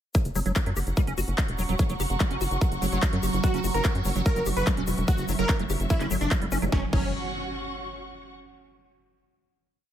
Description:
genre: psychedelic trance.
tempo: 146 BPM.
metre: 4/4.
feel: straight.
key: unclear.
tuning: A4 = 440 Hz.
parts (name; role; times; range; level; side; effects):
evolving wavetable pad; sustained chords; 1.2-6.8 s; F#3; -34 LUFS; right 4 dB; phaser, built-in reverb, sidechain pumping.
liquid acid bass; riff; 0.1-7.1 s; F#3 to G4; -33 LUFS; equal; chorus, auto-pan, sidechain pumping, tape echo.
big-room dance drum kit; drums; 0.1-7.0 s; crash cymbal, handclaps, hi-hat, snare drum; -34 LUFS; left 1 dB; none.
electronic kick drum; drums; 0.1-7.0 s; none; -25 LUFS; equal; none.
egg shaker; percussion; 0.1-6.7 s; none; -41 LUFS; left 6 dB; none.
warm studio string section; texture; 0.1-8.3 s; C#4 to C#6; -36 LUFS; equal; sidechain pumping.
tight sequencer bass; bass; 0.3-7.1 s; E1 to F#2; -29 LUFS; equal; none.
supersaw stab; melody; 3.4-7.1 s; C#4 to B4; -32 LUFS; right 1 dB; phaser, sidechain pumping, digital delay.
zap and impact; sound effects; 6.5-8.4 s; none; -37 LUFS; equal; none.
room: little or no reverb.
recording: none.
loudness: -23 LUFS.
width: side -11 dB against mid.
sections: 0.1-6.7 drop; 6.7-8.4 final chord.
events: drop 0.1-6.7.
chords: 0.1 F#5.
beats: | 0.15 0.56 0.97 1.38 | 1.79 2.20 2.61 3.02 | 3.44 3.85 4.26 4.67 | 5.08 5.49 5.90 6.31 | 6.72 7.13 7.55 7.96.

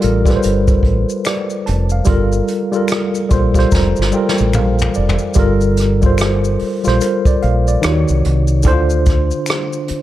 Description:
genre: R&B, neo-soul.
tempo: 73 BPM.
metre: 4/4.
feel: swing 61% on 16ths.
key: G minor.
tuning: A4 = 440 Hz.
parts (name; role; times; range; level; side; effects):
tine electric piano; accompaniment; 0.0-10.0 s; D3 to C6; -16 LUFS; equal; overdrive, fast stereo tremolo.
deep dub fingered electric bass; bass; 0.0-9.9 s; F1 to Eb2; -16 LUFS; equal; none.
vintage brush drum kit; drums; 0.0-10.0 s; hi-hat, kick drum, rim click, snare drum, toms; -17 LUFS; equal; none.
maracas and finger snaps; percussion; 0.3-9.9 s; none; -29 LUFS; left 5 dB; none.
room: light reverb, studio reverb.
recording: none.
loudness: -12 LUFS.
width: side -14 dB against mid.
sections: 0.0-5.4 A section; 5.4-10.0 B section.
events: tine electric piano fill 2.9-5.4; drum fill 3.7-5.4.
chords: 0.0 Gm9; 7.8 Ebm7; 8.6 Dm7.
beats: 0.43 1.25 | 2.07 2.90 3.72 4.54 | 5.36 6.18 7.00 7.83 | 8.65 9.47.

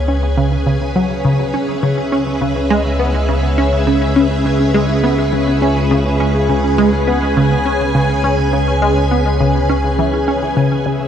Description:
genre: ambient, sequencer-driven space music.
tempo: 103 BPM.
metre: 4/4.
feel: straight.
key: C# minor.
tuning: A4 = 440 Hz.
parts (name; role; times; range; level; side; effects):
string machine, full ensemble; sustained chords; 0.0-11.1 s; C#3 to G#5; -18 LUFS; left 1 dB; ensemble chorus.
analog drone; bass; 0.0-10.8 s; C#2; -18 LUFS; equal; chorus.
tight sequenced synth; riff; 0.1-11.0 s; C#3 to C#4; -16 LUFS; equal; chorus, phaser, tape echo.
room: wet cathedral reverb, RT60 5.2 s.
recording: in a vast, echoing space.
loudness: -13 LUFS.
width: side -9 dB against mid.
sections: 0.0-10.9 A section.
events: fade-in on string machine 0.0-10.9.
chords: 0.0 C#m7.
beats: 0.37 0.96 | 1.54 2.12 2.70 3.29 | 3.87 4.45 5.03 5.62 | 6.20 6.78 7.36 7.95 | 8.53 9.11 9.69 10.28 | 10.86.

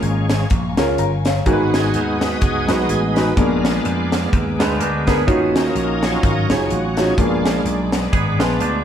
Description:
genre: uptempo gospel.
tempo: 126 BPM.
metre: 4/4.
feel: swing 57% on 8ths.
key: unclear.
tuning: A4 = 440 Hz.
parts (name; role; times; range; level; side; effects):
warm concert grand piano; accompaniment; 0.0-8.7 s; Ab2 to Bb5; -20 LUFS; equal; none.
bright tonewheel organ; sustained chords; 0.0-8.8 s; Gb3 to Db5; -22 LUFS; right 2 dB; slow rotary speaker, overdrive, chorus vibrato.
dark studio string section; sustained chords; 0.0-8.8 s; Eb5 to Eb6; -32 LUFS; left 4 dB; none.
vintage slap bass; bass; 0.0-8.8 s; Gb1 to F2; -22 LUFS; equal; none.
crisp fusion drum kit; drums; 0.0-8.7 s; hi-hat, kick drum, snare drum; -21 LUFS; equal; none.
twangy electric guitar; second line; 4.6-8.8 s; F3 to Bb4; -24 LUFS; right 3 dB; spring reverb.
room: moderate stone room reverb, RT60 1.3 s.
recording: band playing live in one room.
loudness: -15 LUFS.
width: side -9 dB against mid.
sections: 0.0-8.8 A section.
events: tonewheel organ solo 0.0-8.8.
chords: 0.0 Bbm7; 1.5 Abm7; 3.4 Bb7b9; 5.3 Ebm9; 7.2 Bb7b9.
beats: 0.03 0.51 0.98 | 1.46 1.94 2.42 2.90 | 3.37 3.85 4.33 4.80 | 5.28 5.75 6.23 6.71 | 7.18 7.66 8.13 8.60.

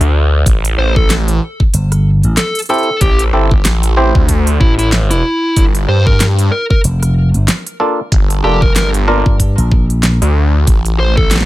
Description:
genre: glitch hop.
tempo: 94 BPM.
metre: 4/4.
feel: swing 57% on 16ths.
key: G dorian.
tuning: A4 = 440 Hz.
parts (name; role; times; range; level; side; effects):
phased detuned saw bass; bass; 0.0-11.5 s; F1 to G2; -12 LUFS; equal; phaser.
pop drum kit; drums; 0.0-11.5 s; hi-hat, rim click, snare drum; -17 LUFS; right 1 dB; none.
electronic kick drum; drums; 0.5-11.3 s; none; -12 LUFS; equal; none.
dark smooth lead guitar; melody; 0.8-11.3 s; E4 to C5; -19 LUFS; left 1 dB; overdrive, tape echo.
slap bass with an envelope filter; bass; 1.7-2.4, 6.8-10.2 s; F1 to G2; -12 LUFS; equal; tube saturation.
clav; stabs; 2.7-9.4 s; Bb3 to C5; -16 LUFS; right 1 dB; sidechain pumping, tape echo.
room: little or no reverb.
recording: none.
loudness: -10 LUFS.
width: side -16 dB against mid.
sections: 0.0-11.5 A section.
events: none.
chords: 0.5 Am7; 5.6 Gm7; 10.7 N.C..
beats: | 0.46 1.10 1.74 2.38 | 3.02 3.65 4.29 4.93 | 5.57 6.21 6.84 7.48 | 8.12 8.76 9.40 10.04 | 10.67 11.31.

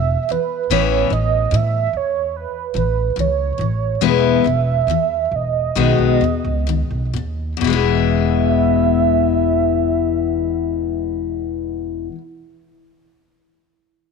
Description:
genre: pop.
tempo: 63-74 BPM.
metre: 4/4.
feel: straight.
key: E major.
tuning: A4 = 441 Hz.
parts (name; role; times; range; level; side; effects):
warm velvety synth lead; melody; 0.0-12.1 s; B4 to E5; -21 LUFS; right 11 dB; chorus, phaser, tremolo.
picked steel-string acoustic guitar; accompaniment; 0.0-12.2 s; E2 to F#4; -19 LUFS; left 13 dB; none.
upright bass; bass; 0.0-12.1 s; E1 to A2; -21 LUFS; right 1 dB; none.
room: light reverb, studio reverb.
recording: 1960s-style stereo with parts hard left and right.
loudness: -16 LUFS.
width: side -5 dB against mid.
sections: 0.0-7.6 A section; 7.6-11.4 B section.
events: slowing down 0.7-7.6.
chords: 0.0 E5; 0.7 Aadd9; 4.0 E; 5.8 B6; 7.6 E.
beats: | 0.70 1.52 2.34 3.17 | 4.02 4.88 5.77 6.68 | 7.62 8.57 9.53 10.48.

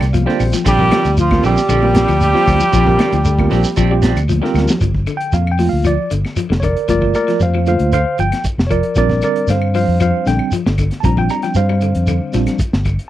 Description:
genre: afrobeat.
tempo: 116 BPM.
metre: 4/4.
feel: straight.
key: G minor.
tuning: A4 = 438 Hz.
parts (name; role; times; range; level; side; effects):
trombone with metal mute; melody; 0.0-4.3 s; D4 to G4; -16 LUFS; right 2 dB; none.
raspy baritone saxophone; second line; 0.0-4.3 s; D3 to G3; -25 LUFS; left 10 dB; none.
raspy tenor saxophone; second line; 0.0-4.3 s; D3 to G3; -26 LUFS; right 4 dB; none.
tine electric piano; accompaniment; 0.0-12.6 s; G3 to Bb5; -18 LUFS; right 2 dB; medium stereo tremolo.
clean electric guitar; stabs; 0.0-4.6 s; F3 to G4; -22 LUFS; right 9 dB; none.
fingered electric bass; bass; 0.0-13.0 s; F1 to G2; -16 LUFS; equal; none.
crunchy breakbeat drum kit; drums; 0.0-13.1 s; hi-hat, kick drum, snare drum; -20 LUFS; equal; none.
claves; percussion; 0.0-13.0 s; none; -34 LUFS; left 5 dB; none.
shekere; percussion; 0.0-13.0 s; none; -22 LUFS; right 1 dB; none.
clean electric guitar; arpeggios; 0.1-12.9 s; Bb2 to G3; -23 LUFS; left 7 dB; spring reverb.
congas; percussion; 0.1-4.8 s; none; -24 LUFS; right 2 dB; none.
room: light reverb.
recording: dry, close 1970s-style studio recording.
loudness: -12 LUFS.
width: side -13 dB against mid.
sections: 0.0-4.8 A section; 4.8-13.1 B section.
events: tine electric piano fill 0.0-0.7; drum fill 4.3-4.8; tine electric piano solo 4.8-13.1.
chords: 0.0 Gm7; 9.0 Bb69.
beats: 0.14 | 0.66 1.18 1.70 2.21 | 2.73 3.25 3.77 4.29 | 4.81 5.33 5.85 6.37 | 6.89 7.41 7.93 8.45 | 8.97 9.49 10.01 10.53 | 11.04 11.56 12.08 12.60.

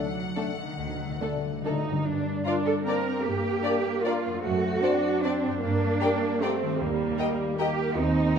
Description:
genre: classical, orchestral ballroom waltz.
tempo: 130-165 BPM.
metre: 3/4.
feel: rubato.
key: G minor.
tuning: A4 = 440 Hz.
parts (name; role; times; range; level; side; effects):
rich studio violin section; melody; 0.0-8.4 s; F#5 to Bb5; -42 LUFS; left 6 dB; none.
mellow French horn section; sustained chords; 0.0-8.4 s; A3 to G4; -35 LUFS; left 6 dB; none.
concert harp; arpeggios; 0.0-8.4 s; F#2 to D5; -35 LUFS; left 8 dB; none.
warm studio cello section; bass; 0.0-8.4 s; D3 to Bb4; -29 LUFS; right 4 dB; none.
timpani; percussion; 0.0-2.0 s; D3; -35 LUFS; right 1 dB; none.
warm studio violin section; second line; 0.4-7.7 s; A4 to G5; -34 LUFS; left 4 dB; none.
dark studio viola section; accompaniment; 0.4-8.4 s; G3 to D4; -29 LUFS; right 1 dB; none.
warm studio double bass section; bass; 0.8-8.3 s; D2 to G2; -32 LUFS; right 4 dB; none.
room: wet concert hall reverb, RT60 1.7 s.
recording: none.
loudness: -24 LUFS.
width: side -7 dB against mid.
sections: 0.0-2.1 A section; 2.1-8.4 B section.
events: timpani fill 0.0-2.1.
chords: 0.0 D; 2.1 Gm; 4.4 D7/F#; 5.6 Gm; 6.8 Eb.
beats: 0.37 | 0.79 1.22 1.65 | 2.06 2.46 2.87 | 3.25 3.64 4.05 | 4.44 4.83 5.24 | 5.62 6.01 6.42 | 6.80 7.19 7.59 | 7.97 8.35.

